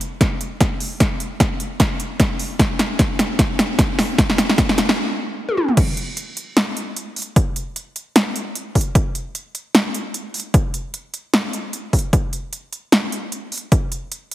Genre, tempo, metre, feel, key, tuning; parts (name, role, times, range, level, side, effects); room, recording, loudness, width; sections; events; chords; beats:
future bass; 151 BPM; 4/4; swing 56% on 16ths, half-time
big-room dance drum kit; drums; 0.0-14.3 s; crash cymbal, hi-hat, snare drum, toms; -19 LUFS; equal; overdrive
electronic kick drum; drums; 0.2-13.8 s; -18 LUFS; equal; overdrive
moderate lush hall reverb, RT60 1.7 s; heavily compressed radio sound; -17 LUFS; side -14 dB against mid
0.0-5.8 A section; 5.8-14.3 B section
build-up 0.0-5.8; drum fill 0.0-5.0, 5.5; stop 5.0-5.8; drop 5.8-14.3
0.21 0.61 | 1.00 1.40 1.80 2.20 | 2.59 2.99 3.39 3.79 | 4.18 4.58 4.98 5.38 | 5.77 6.17 6.57 6.96 | 7.36 7.76 8.16 8.55 | 8.95 9.35 9.74 10.14 | 10.54 10.94 11.34 11.73 | 12.13 12.53 12.92 13.32 | 13.72 14.12